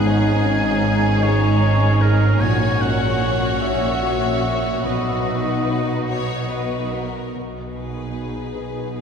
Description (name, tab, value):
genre	cinematic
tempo	50 BPM (dotted quarters)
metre	6/8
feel	rubato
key	unclear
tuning	A4 = 440 Hz
part	bright symphonic violin section	melody	0.0-9.0 s	G#4 to C#5	-28 LUFS	left 4 dB	none
part	clear studio violin section	second line	0.0-9.0 s	D#4 to G#4	-29 LUFS	left 2 dB	none
part	felt-muted upright piano	accompaniment	0.0-9.0 s	A#1 to D#5	-28 LUFS	equal	none
part	rich studio viola section	accompaniment	0.0-9.0 s	C#4 to D#4	-32 LUFS	right 2 dB	none
part	warm French horn section	sustained chords	0.0-7.0 s	B3 to F#4	-28 LUFS	left 2 dB	none
part	concert harp	arpeggios	0.0-9.0 s	G#2 to F#5	-29 LUFS	left 2 dB	none
part	rich studio double bass section	bass	0.0-9.0 s	G#1 to B1	-22 LUFS	right 2 dB	none
part	warm studio cello section	bass	0.0-9.0 s	G#2 to B2	-27 LUFS	right 2 dB	none
part	clear cor anglais	second line	0.1-6.9 s	A#4 to G#5	-26 LUFS	right 1 dB	none
room	wet cathedral reverb, RT60 6.1 s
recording	recorded in a church or concert hall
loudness	-17 LUFS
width	side -6 dB against mid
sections	0.0-7.4 A section; 7.4-9.0 B section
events	none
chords	0.1 C#sus2/G#; 2.4 F#/A#; 4.9 B; 7.4 B6